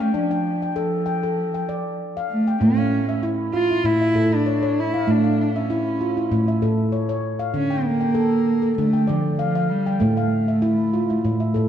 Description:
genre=world meditative, meditative tuned percussion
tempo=97 BPM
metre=4/4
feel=swing 54% on 16ths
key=A phrygian dominant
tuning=A4 = 441 Hz
part: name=dark cello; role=melody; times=0.0-11.7 s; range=F3 to F4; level=-22 LUFS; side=right 1 dB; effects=diffuse ambient delay
part: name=handpan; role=arpeggios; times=0.0-11.7 s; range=A2 to G5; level=-21 LUFS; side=equal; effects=none
room=wet echo chamber reverb, RT60 1.5 s, studio reverb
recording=dark, warm production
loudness=-19 LUFS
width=side -9 dB against mid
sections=0.0-11.7 A section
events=none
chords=0.0 Dm; 2.6 A; 7.5 Dm; 10.0 A5

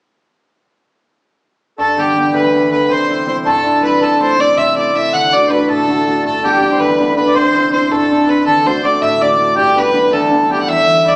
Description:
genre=celtic folk, Celtic jig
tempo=108 BPM (dotted quarters)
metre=6/8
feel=straight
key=G major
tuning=A4 = 440 Hz
part: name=rich fiddle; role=melody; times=1.8-11.2 s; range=G4 to F#5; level=-13 LUFS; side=equal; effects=none
part: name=accordion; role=second line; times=1.8-11.2 s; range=G4 to F#5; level=-17 LUFS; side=equal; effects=none
part: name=concert harp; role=accompaniment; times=1.8-11.2 s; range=D2 to F#4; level=-16 LUFS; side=equal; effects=none
room=wet large studio reverb, RT60 1.2 s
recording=band playing live in one room, small speaker sound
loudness=-10 LUFS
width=side -35 dB against mid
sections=1.8-10.7 A section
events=none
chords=1.8 G; 2.9 C; 4.0 Am/C; 5.1 D; 6.2 G; 7.3 Cadd9; 8.5 D; 9.6 G

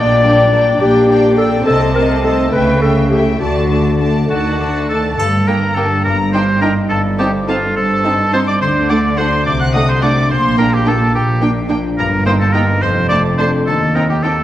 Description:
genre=cinematic, playful, whimsical film cue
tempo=70 BPM (dotted quarters)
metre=6/8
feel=straight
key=G minor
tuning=A4 = 441 Hz
part: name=rich studio violin section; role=melody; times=0.0-14.3 s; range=F#5 to A5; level=-26 LUFS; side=left 2 dB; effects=none
part: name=dark clarinet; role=second line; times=0.0-4.3 s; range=F#4 to D5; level=-14 LUFS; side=left 2 dB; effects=none
part: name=dark studio violin section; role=second line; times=0.0-14.3 s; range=D5 to F#6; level=-24 LUFS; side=left 2 dB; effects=none
part: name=dark studio viola section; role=accompaniment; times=0.0-14.3 s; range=A3 to Bb4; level=-20 LUFS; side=right 1 dB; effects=none
part: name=concert harp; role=arpeggios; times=0.0-14.4 s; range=F2 to A5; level=-21 LUFS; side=left 5 dB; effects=none
part: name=rich chamber cello section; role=bass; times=0.0-14.4 s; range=Eb2 to Eb3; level=-19 LUFS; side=right 2 dB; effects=none
part: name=warm studio double bass section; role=bass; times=0.0-14.4 s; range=F1 to Eb2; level=-20 LUFS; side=right 2 dB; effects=none
part: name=clear oboe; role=second line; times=4.3-14.4 s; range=F4 to F#5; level=-18 LUFS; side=right 1 dB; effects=none
part: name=triangle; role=percussion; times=5.2-6.3 s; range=none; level=-34 LUFS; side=left 2 dB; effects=none
room=wet scoring stage reverb, RT60 1.6 s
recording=worn, warbling old tape, cassette tape, warbly pitch drift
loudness=-12 LUFS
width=side -13 dB against mid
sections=0.0-5.2 A section; 5.2-14.4 B section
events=none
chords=0.0 Gm/Bb; 1.7 Adim/C; 2.5 A7/C#; 3.4 D; 5.2 Gm; 6.1 Ebmaj7/G; 6.9 Adim/G; 8.6 D; 9.5 D7/C; 10.3 Gm/Bb; 12.0 Eb/G; 12.8 Dm/F; 13.7 Cm/Eb

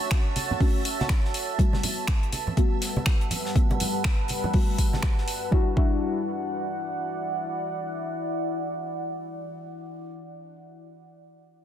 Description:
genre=deep house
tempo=122 BPM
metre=4/4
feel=swing 60% on 16ths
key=E dorian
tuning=A4 = 440 Hz
part: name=deep dark ambient pad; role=sustained chords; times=0.0-9.8 s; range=G3 to A5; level=-31 LUFS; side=right 1 dB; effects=chorus, built-in reverb, sidechain pumping
part: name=deep mellow chord stab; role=stabs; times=0.0-10.1 s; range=G3 to F#4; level=-32 LUFS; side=left 3 dB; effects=chorus, sidechain pumping, dub echo
part: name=string machine, violins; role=texture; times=0.0-5.5 s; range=E5 to E6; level=-44 LUFS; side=left 1 dB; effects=ensemble chorus, sidechain pumping
part: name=deep house drum kit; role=drums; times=0.1-5.4 s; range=finger snaps, hi-hat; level=-31 LUFS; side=equal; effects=soft clipping on snare
part: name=deep reggae drum kit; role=drums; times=0.1-5.4 s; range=hi-hat, snare drum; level=-39 LUFS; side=left 4 dB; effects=high-pass filter on hats, high-pass filter on snare, high-pass filter on room
part: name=electronic kick drum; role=drums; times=0.1-5.9 s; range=none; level=-23 LUFS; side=equal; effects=none
part: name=congas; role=percussion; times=0.4-5.0 s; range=none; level=-30 LUFS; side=right 2 dB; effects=none
room=light reverb, studio ambience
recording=dense, heavily limited modern master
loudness=-23 LUFS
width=side -10 dB against mid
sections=0.0-5.5 A section; 5.5-9.5 B section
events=none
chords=0.0 Dmaj7; 1.3 Gmaj9; 5.5 Em9

